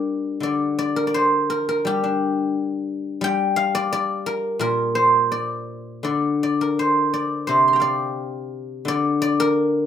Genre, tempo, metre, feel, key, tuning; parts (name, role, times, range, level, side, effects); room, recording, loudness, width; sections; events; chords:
chinese traditional, Chinese solo plucked strings; 85 BPM; 2/4; uneven beats, rubato; G yu mode; A4 = 440 Hz
guzheng; solo; 0.0-9.9 s; Bb2 to C6; -19 LUFS; left 1 dB
moderate studio reverb, RT60 0.5 s; rough home demo mix; -19 LUFS; side -9 dB against mid
0.4-9.9 A section